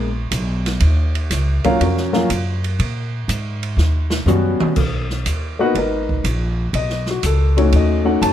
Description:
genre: jazz piano trio.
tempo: 121 BPM.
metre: 4/4.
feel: swing 69% on 8ths.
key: unclear.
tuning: A4 = 440 Hz.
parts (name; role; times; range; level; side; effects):
warm upright piano; melody; 0.0-8.3 s; Gb3 to A5; -18 LUFS; left 2 dB; plate reverb.
upright bass; bass; 0.0-8.3 s; Ab1 to Bb2; -18 LUFS; equal; none.
open jazz drum kit; drums; 0.3-8.3 s; crash cymbal, hi-hat, kick drum, ride cymbal, snare drum, toms; -25 LUFS; right 3 dB; none.
room: light reverb.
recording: none.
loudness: -16 LUFS.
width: side -11 dB against mid.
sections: 0.0-4.8 A section; 4.8-8.3 A section.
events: upright piano solo 0.0-8.3; drum fill 3.8-4.8.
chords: 0.0 Abmadd9 (rootless); 0.8 Ebm9; 2.8 Absus2; 3.8 Eb7alt; 4.8 Abmadd9; 6.7 B7.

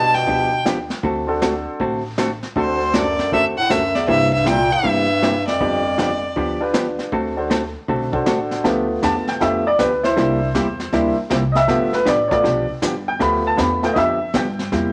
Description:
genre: country, western swing.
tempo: 158 BPM.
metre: 4/4.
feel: swing 65% on 8ths.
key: G major.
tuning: A4 = 445 Hz.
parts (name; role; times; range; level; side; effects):
clear fiddle; melody; 0.0-6.6 s; C5 to A5; -21 LUFS; equal; none.
clear bass clarinet; second line; 0.0-6.6 s; D2 to B2; -25 LUFS; equal; none.
clear upright piano; accompaniment; 0.0-14.9 s; A3 to B5; -22 LUFS; equal; none.
upright bass; bass; 0.0-14.9 s; G1 to G2; -30 LUFS; equal; none.
vintage brush drum kit; drums; 0.1-14.9 s; brushed snare drum, hi-hat, kick drum, snare drum; -29 LUFS; equal; none.
vintage hollow-body jazz guitar; accompaniment; 0.3-14.9 s; C3 to A4; -25 LUFS; equal; none.
room: moderate studio reverb, RT60 0.9 s.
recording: vinyl crackle.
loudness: -19 LUFS.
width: mono.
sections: 0.0-8.6 A section; 8.6-14.9 B section.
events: upright piano solo 8.6-14.9.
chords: 0.0 G7; 1.0 D7; 4.1 C7; 5.6 G7; 7.1 D7; 8.6 G7; 10.2 C7; 11.7 G7.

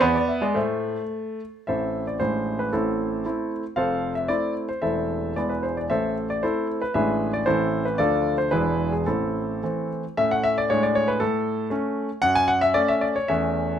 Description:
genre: classical-period piano sonatina.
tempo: 105-119 BPM.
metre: 2/4.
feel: rubato.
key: A minor, A major from 10.2 s.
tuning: A4 = 440 Hz.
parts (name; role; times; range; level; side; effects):
clear concert grand piano; solo; 0.0-13.8 s; E1 to G#5; -21 LUFS; equal; none.
room: light reverb.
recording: close, detailed microphones.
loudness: -22 LUFS.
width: side -9 dB against mid.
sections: 0.0-1.7 A section; 1.7-10.2 A section; 10.2-13.8 A section.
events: none.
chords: 0.0 E5; 0.6 Am; 2.2 E7/A; 2.7 Am; 3.8 Fmaj7; 4.8 Am/E; 5.4 E; 5.9 Am; 6.9 E7/A; 7.5 Am; 8.0 Dm; 8.5 E7; 9.1 Am; 10.2 A; 10.7 Bm13/A; 11.2 A; 12.2 F#m.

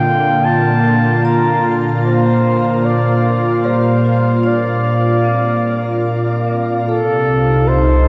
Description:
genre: ambient.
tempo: 74 BPM.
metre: 3/4.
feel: straight.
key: unclear.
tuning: A4 = 440 Hz.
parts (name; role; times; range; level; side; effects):
mellow flugelhorn; melody; 0.0-8.1 s; A4 to Bb5; -20 LUFS; equal; shimmer reverb, tape echo.
warm analog pad; sustained chords; 0.0-8.1 s; Bb2 to G5; -16 LUFS; equal; chorus, shimmer reverb.
vibraphone with hard mallets; arpeggios; 0.0-8.1 s; G3 to D5; -34 LUFS; equal; none.
deep rumbling drone; bass; 7.4-8.1 s; C2; -18 LUFS; equal; built-in reverb, tube saturation.
overtone-sweeping drone; drone; 6.9-8.1 s; none; barely audible; none; none.
room: wet cathedral reverb, RT60 5.8 s.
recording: dark, warm production.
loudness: -15 LUFS.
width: mono.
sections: 0.0-6.9 A section; 6.9-8.1 B section.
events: none.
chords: 0.0 Bb; 6.9 F7/C.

